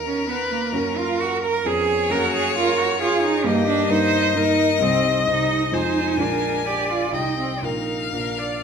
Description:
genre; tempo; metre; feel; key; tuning
quick classical-period movement for piano quartet; 131 BPM; 3/4; rubato; Eb major from 3.5 s; A4 = 440 Hz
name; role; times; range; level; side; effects
clear violin; melody; 0.0-8.6 s; Bb4 to Ab5; -25 LUFS; left 10 dB; none
clear viola; accompaniment; 0.0-8.6 s; Gb4 to Eb5; -25 LUFS; right 2 dB; none
dark grand piano; accompaniment; 0.0-8.6 s; Bb1 to Eb5; -26 LUFS; left 1 dB; none
rich cello; second line; 0.1-8.6 s; Bb3 to Bb4; -23 LUFS; right 5 dB; none
room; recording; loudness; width
wet recital hall reverb, RT60 1.4 s; none; -18 LUFS; side -6 dB against mid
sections
0.0-8.6 A section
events
none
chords
0.0 Ebm; 0.7 Gb; 1.7 Db7/F; 2.1 Gb; 3.5 Eb/G; 4.8 Cm; 5.7 Fm7; 6.2 Bb7; 7.1 Cm; 7.6 Bb

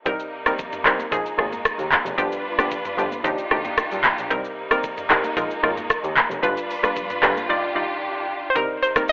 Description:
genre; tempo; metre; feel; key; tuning
afrobeats; 113 BPM; 4/4; straight; C minor; A4 = 440 Hz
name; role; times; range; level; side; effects
hollow square pluck; accompaniment; 0.1-9.1 s; F3 to D5; -27 LUFS; equal; chorus
warm studio string section; sustained chords; 0.1-9.1 s; C3 to B4; -30 LUFS; equal; none
warm double bass; bass; 0.1-8.6 s; F1 to G2; -33 LUFS; equal; none
afro-pop drum kit; drums; 0.1-9.1 s; handclaps, hi-hat, kick drum, rim click, shaker, toms; -24 LUFS; equal; none
congas; percussion; 0.5-9.1 s; none; -44 LUFS; equal; none
hollow square pluck; melody; 8.5-9.1 s; Bb4 to C5; -22 LUFS; equal; chorus
room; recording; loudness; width
moderate plate reverb, RT60 2.1 s; telephone sound; -22 LUFS; mono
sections
0.1-8.6 A section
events
break 7.5-8.6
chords
0.1 Cm7; 1.1 Bb7sus4; 2.2 G7; 3.2 Ebmaj9; 4.3 Cm7; 5.4 Bb7sus4; 6.4 G7; 7.5 Ebmaj9; 8.6 Cm7

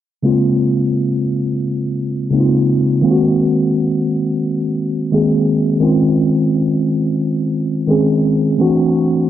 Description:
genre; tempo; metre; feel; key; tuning
hip hop; 86 BPM; 4/4; swing 60% on 16ths; unclear; A4 = 440 Hz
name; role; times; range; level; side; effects
mellow tine electric piano; accompaniment; 0.2-9.3 s; Db3 to Ab4; -13 LUFS; equal; medium stereo tremolo, cassette tape, low-pass filter
room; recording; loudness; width
light reverb; low-pass filter; -13 LUFS; side -11 dB against mid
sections
0.2-9.3 A section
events
filter sweep 0.2-9.3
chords
0.2 Bbm9; 3.0 Ab9; 5.8 Dbmaj9; 8.6 D9

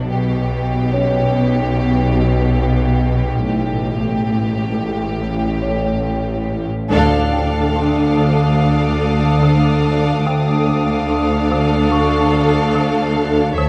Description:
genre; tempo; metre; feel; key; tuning
cinematic; 72 BPM; 4/4; straight; D harmonic minor from 6.9 s; A4 = 442 Hz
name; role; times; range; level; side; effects
clear symphonic violin section; melody; 0.0-13.7 s; G4 to F5; -28 LUFS; equal; none
rich symphonic cello section; bass; 0.0-13.7 s; D2 to B2; -24 LUFS; equal; none
warm symphonic double bass section; bass; 0.0-13.7 s; A1 to D2; -24 LUFS; equal; none
bowed-like drone; drone; 0.0-13.7 s; A1 to D2; -23 LUFS; equal; built-in reverb
celesta; texture; 0.9-13.7 s; C#4 to C#6; -29 LUFS; equal; none
warm symphonic violin section; second line; 6.9-13.7 s; A4; -24 LUFS; equal; none
rich studio viola section; accompaniment; 6.9-13.7 s; D4 to C#5; -23 LUFS; equal; none
folk marimba with hard mallets; riff; 6.9-13.7 s; D3 to D4; -25 LUFS; equal; none
warm symphonic violin section; texture; 6.9-13.7 s; D6 to B6; -31 LUFS; equal; none
room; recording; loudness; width
wet scoring stage reverb, RT60 1.7 s; none; -17 LUFS; mono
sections
0.0-6.9 A section; 6.9-13.7 B section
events
band accent 6.9-7.8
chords
0.1 G/B; 3.5 A7; 6.9 Dm

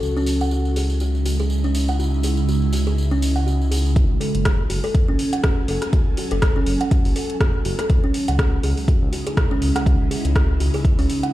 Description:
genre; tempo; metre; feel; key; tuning
afro house; 122 BPM; 4/4; swing 56% on 16ths; F# dorian; A4 = 439 Hz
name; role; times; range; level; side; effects
ethereal airy pad; sustained chords; 0.0-11.3 s; C#3 to G#5; -27 LUFS; right 2 dB; ensemble chorus, built-in reverb, phaser, sidechain pumping
kalimba; arpeggios; 0.0-11.3 s; C#4 to F#5; -25 LUFS; equal; sidechain pumping, digital delay
smooth synth bass; bass; 0.0-11.1 s; E1 to C#2; -21 LUFS; equal; sidechain pumping
tambourine; percussion; 0.0-3.9 s; none; -35 LUFS; right 2 dB; none
deep house drum kit; drums; 0.3-11.3 s; hi-hat, rim click; -28 LUFS; equal; overdrive
electronic kick drum; drums; 4.0-11.0 s; none; -18 LUFS; equal; none
room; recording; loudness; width
light reverb, digital ambience; played on a big sound system in a bare room, large studio reverb; -17 LUFS; side -15 dB against mid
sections
0.0-4.0 A section; 4.0-11.3 B section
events
drop 4.0-11.3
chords
0.0 C#m; 4.0 F#m; 7.9 C#m

